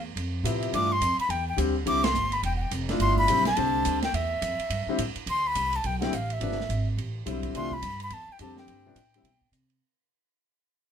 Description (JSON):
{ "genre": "modal jazz", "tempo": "211 BPM", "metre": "4/4", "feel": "swing 61% on 8ths", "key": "unclear", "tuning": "A4 = 442 Hz", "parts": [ { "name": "breathy bright concert flute", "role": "melody", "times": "0.0-9.5 s", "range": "E5 to D6", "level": "-27 LUFS", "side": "left 1 dB", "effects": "none" }, { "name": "upright bass", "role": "bass", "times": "0.0-9.8 s", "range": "E1 to C3", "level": "-30 LUFS", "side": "right 1 dB", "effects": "none" }, { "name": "open jazz drum kit", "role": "drums", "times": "0.2-9.7 s", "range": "hi-hat, kick drum, ride cymbal, snare drum", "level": "-35 LUFS", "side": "right 5 dB", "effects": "none" }, { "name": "warm concert grand piano", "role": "accompaniment", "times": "0.4-9.3 s", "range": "C3 to G4", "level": "-30 LUFS", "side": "left 3 dB", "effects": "none" } ], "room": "moderate club reverb, RT60 0.6 s", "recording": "minimal, uncompressed stereo recording", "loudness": "-24 LUFS", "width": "side -8 dB against mid", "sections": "0.0-5.3 A section; 5.3-9.8 B section", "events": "band accent 2.0; fade-out 5.3-9.8", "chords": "0.0 Dm9 (rootless); 0.7 C" }